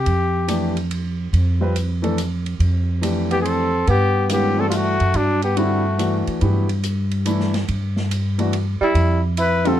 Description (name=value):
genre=modal jazz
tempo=142 BPM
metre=3/4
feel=swing 66% on 8ths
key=G mixolydian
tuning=A4 = 440 Hz
part: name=mellow trumpet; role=melody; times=0.0-0.7, 3.3-6.3, 8.8-9.8 s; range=D4 to B4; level=-21 LUFS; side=left 3 dB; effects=none
part: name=upright bass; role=bass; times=0.0-9.8 s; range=F2 to G2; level=-20 LUFS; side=equal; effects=none
part: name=open jazz drum kit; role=drums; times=0.1-9.7 s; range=hi-hat, ride cymbal, snare drum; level=-32 LUFS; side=right 3 dB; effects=none
part: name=clear concert grand piano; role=accompaniment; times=0.5-9.8 s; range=D3 to B4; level=-23 LUFS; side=left 2 dB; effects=none
part: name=mellow tenor saxophone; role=second line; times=3.3-6.3, 8.8-9.8 s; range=F#3 to E4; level=-23 LUFS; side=right 3 dB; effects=none
room=light reverb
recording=dark, warm production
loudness=-17 LUFS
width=side -11 dB against mid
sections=0.0-9.8 A section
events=none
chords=0.0 Fmaj9; 3.9 Gmaj7sus2; 9.0 Fmaj7sus2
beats=| 0.06 0.48 0.91 | 1.33 1.75 2.18 | 2.60 3.02 3.45 | 3.87 4.29 4.72 | 5.14 5.57 5.99 | 6.41 6.84 7.26 | 7.68 8.11 8.53 | 8.96 9.38